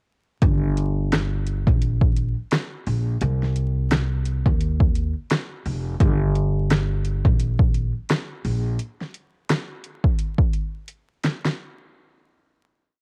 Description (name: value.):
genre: hip hop, boom-bap hip-hop.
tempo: 86 BPM.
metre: 4/4.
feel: swing 60% on 16ths.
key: unclear.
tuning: A4 = 439 Hz.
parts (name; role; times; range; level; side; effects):
upright bass; bass; 0.4-8.8 s; F1 to Eb2; -24 LUFS; equal; none.
deep house drum kit; drums; 0.4-11.6 s; hi-hat, kick drum, rim click, snare drum; -23 LUFS; equal; overdrive, cassette tape.
room: little or no reverb.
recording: home recording on cassette, vinyl crackle.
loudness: -23 LUFS.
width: mono.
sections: 0.4-11.6 hook.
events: drum fill 10.9-11.6.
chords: none.